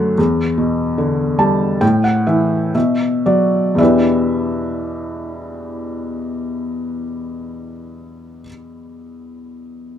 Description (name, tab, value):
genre	classical, lyrical solo piano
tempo	54-78 BPM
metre	4/4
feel	rubato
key	E minor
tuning	A4 = 440 Hz
part	felt-muted upright piano	solo	0.0-10.0 s	E2 to A5	-16 LUFS	left 1 dB	none
room	moderate small room ambience, RT60 0.5 s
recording	dark, warm production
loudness	-15 LUFS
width	side -9 dB against mid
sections	0.0-3.8 A section; 3.8-8.1 B section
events	slowing down 0.0-3.8; felt piano fill 1.0-3.8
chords	0.2 Em7; 1.8 A5; 2.8 Bsus4; 3.8 Em7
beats	| 0.18 0.98 1.82 2.75 | 3.80 4.86 5.90 6.97